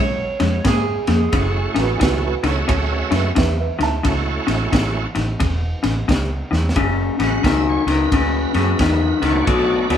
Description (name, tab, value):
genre	electric blues shuffle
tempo	88 BPM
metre	4/4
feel	swing 63% on 8ths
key	F# minor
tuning	A4 = 437 Hz
part	lightly driven lead guitar	melody	0.0-3.3 s	G#4 to C#5	-26 LUFS	right 5 dB	none
part	electric guitar through a small old amp	riff	0.0-10.0 s	F#2 to A#3	-20 LUFS	left 4 dB	spring reverb
part	vintage muted fingered electric bass	bass	0.0-10.0 s	E1 to G#2	-22 LUFS	right 1 dB	none
part	crunchy breakbeat drum kit	drums	0.4-10.0 s	kick drum, ride cymbal, snare drum	-23 LUFS	right 1 dB	none
part	bright tonewheel organ	accompaniment	1.3-10.0 s	A3 to F#5	-25 LUFS	right 4 dB	slow rotary speaker, overdrive, chorus vibrato
part	dark upright piano	second line	1.7-4.2 s	F#4 to A5	-24 LUFS	right 7 dB	none
room	moderate large studio reverb, RT60 1.3 s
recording	band playing live in one room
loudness	-16 LUFS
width	side -9 dB against mid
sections	0.0-6.8 A section; 6.8-10.0 B section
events	drum fill 6.4-6.8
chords	0.0 C#7; 1.3 F#m7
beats	0.65 | 1.33 2.01 2.69 3.37 | 4.04 4.72 5.40 6.08 | 6.76 7.44 8.12 8.80 | 9.48